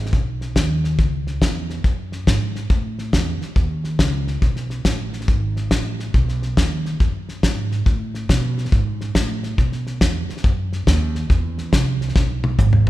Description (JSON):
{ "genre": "honky-tonk and classic country", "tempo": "140 BPM", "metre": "4/4", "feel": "swing 66% on 8ths", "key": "unclear", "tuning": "A4 = 442 Hz", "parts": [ { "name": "upright bass", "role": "bass", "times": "0.0-12.9 s", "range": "G#1 to B2", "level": "-22 LUFS", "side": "right 1 dB", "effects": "none" }, { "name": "cloth-damped thuddy drum kit", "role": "drums", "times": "0.1-12.9 s", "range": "hi-hat, kick drum, snare drum, toms", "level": "-19 LUFS", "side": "left 1 dB", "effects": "none" } ], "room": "light reverb", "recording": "none", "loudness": "-18 LUFS", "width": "side -16 dB against mid", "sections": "0.0-12.9 A section", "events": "drum fill 12.2-12.9", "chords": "none" }